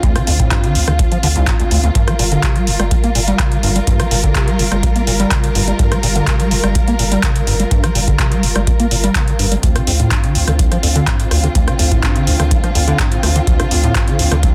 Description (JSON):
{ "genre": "acid house", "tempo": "125 BPM", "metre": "4/4", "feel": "straight", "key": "D minor", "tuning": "A4 = 440 Hz", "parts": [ { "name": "warm symphonic string section", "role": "sustained chords", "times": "0.0-14.5 s", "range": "D3 to Bb4", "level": "-24 LUFS", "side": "equal", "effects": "sidechain pumping" }, { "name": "liquid acid bass", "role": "riff", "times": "0.0-14.5 s", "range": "D1 to Bb3", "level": "-21 LUFS", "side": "equal", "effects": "overdrive, subtle chorus, sidechain pumping, analog delay" }, { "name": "booming analog drum machine", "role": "drums", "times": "0.0-14.5 s", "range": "handclaps, hi-hat, rim click", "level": "-22 LUFS", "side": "equal", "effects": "none" }, { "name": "electronic kick drum", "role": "drums", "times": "0.0-14.5 s", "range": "none", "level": "-19 LUFS", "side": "equal", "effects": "none" }, { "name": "round analog bass", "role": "bass", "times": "0.3-14.5 s", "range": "G1 to D2", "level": "-20 LUFS", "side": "equal", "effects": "sidechain pumping" } ], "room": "light reverb", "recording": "dense, heavily limited modern master", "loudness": "-15 LUFS", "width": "mono", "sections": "0.0-14.5 A section", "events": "none", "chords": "0.0 Dm7; 2.0 Gm7; 9.6 Dm7" }